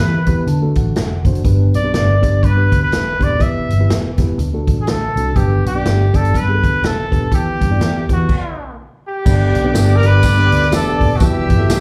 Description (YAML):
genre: uptempo 1960s-style soul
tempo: 123 BPM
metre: 4/4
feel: swing 60% on 8ths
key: G major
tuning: A4 = 440 Hz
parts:
  - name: clear trumpet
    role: melody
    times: 0.0-11.8 s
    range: F#4 to E5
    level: -22 LUFS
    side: equal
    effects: slapback echo
  - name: mellow reed electric piano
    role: accompaniment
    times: 0.0-11.8 s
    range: G2 to B5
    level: -25 LUFS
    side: equal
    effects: fast tremolo
  - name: vintage muted picked electric bass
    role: bass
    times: 0.0-11.8 s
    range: Eb1 to D3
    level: -19 LUFS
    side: equal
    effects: none
  - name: swinging big-band drum kit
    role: drums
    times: 0.3-11.8 s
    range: crash cymbal, hi-hat, kick drum, snare drum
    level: -20 LUFS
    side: equal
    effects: none
  - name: warm studio violin section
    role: second line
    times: 9.3-11.8 s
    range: D5 to E6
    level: -26 LUFS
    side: equal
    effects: slapback echo
  - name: percussive tonewheel organ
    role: sustained chords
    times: 9.3-11.8 s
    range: D3 to G4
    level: -27 LUFS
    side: equal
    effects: none
  - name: tambourine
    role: percussion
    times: 9.3-11.8 s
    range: none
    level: -33 LUFS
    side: equal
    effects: none
room: little or no reverb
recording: live gig heard through the venue's PA, club reverb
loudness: -15 LUFS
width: mono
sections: 0.0-9.3 A section; 9.3-11.8 B section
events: reed electric piano fill 0.0-1.4; stop 8.3-9.3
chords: 0.5 D; 1.4 G; 3.4 Em; 4.4 D; 5.4 G; 7.3 Em; 8.3 N.C.; 9.3 G; 11.2 Emadd9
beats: 0.47 0.96 | 1.45 1.94 2.43 2.92 | 3.40 3.89 4.38 4.87 | 5.36 5.85 6.33 6.82 | 7.31 7.80 8.29 8.78 | 9.26 9.75 10.23 10.72 | 11.21 11.69